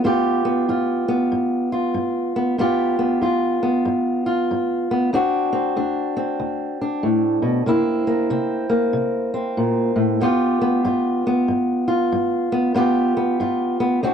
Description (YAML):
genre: blues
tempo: 94 BPM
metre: 4/4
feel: swing 62% on 8ths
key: G mixolydian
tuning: A4 = 440 Hz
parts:
  - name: fingerpicked old ladder-braced acoustic guitar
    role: solo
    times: 0.0-14.1 s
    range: D2 to G4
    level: -18 LUFS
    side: equal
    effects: none
room: little or no reverb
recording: dry, close 1970s-style studio recording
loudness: -18 LUFS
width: side -7 dB against mid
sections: 0.0-14.1 A section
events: none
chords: 0.0 G7; 5.1 D7; 7.7 C7; 10.2 G7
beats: | 0.04 0.68 1.31 1.95 | 2.59 3.22 3.86 4.49 | 5.13 5.77 6.40 7.04 | 7.67 8.31 8.95 9.58 | 10.22 10.85 11.49 12.12 | 12.76 13.40 14.03